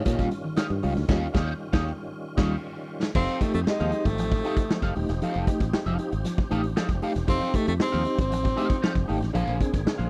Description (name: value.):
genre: funk.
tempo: 116 BPM.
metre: 4/4.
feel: straight.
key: F mixolydian.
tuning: A4 = 441 Hz.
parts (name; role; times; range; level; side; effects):
electric guitar at the edge of break-up; accompaniment; 0.0-10.1 s; D4 to F5; -35 LUFS; equal; wah.
tonewheel organ; sustained chords; 0.0-10.1 s; D3 to Ab4; -40 LUFS; equal; slow rotary speaker, overdrive, chorus vibrato.
fingered electric bass; bass; 0.0-10.1 s; Eb1 to Bb2; -30 LUFS; equal; none.
raw garage drum kit; drums; 0.1-10.1 s; crash cymbal, hi-hat, kick drum, snare drum; -30 LUFS; equal; none.
reed electric piano; stabs; 0.2-10.1 s; Bb2 to Ab4; -33 LUFS; equal; fast tremolo.
breathy tenor saxophone; melody; 3.2-9.1 s; Ab3 to C4; -30 LUFS; equal; none.
room: little or no reverb.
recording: dry, close 1970s-style studio recording.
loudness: -26 LUFS.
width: mono.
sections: 0.0-3.2 A section; 3.2-10.1 B section.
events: band accent 1.1-3.2; drum fill 2.6-3.2.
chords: 0.0 Eb9; 3.2 F9; 9.3 Bb9.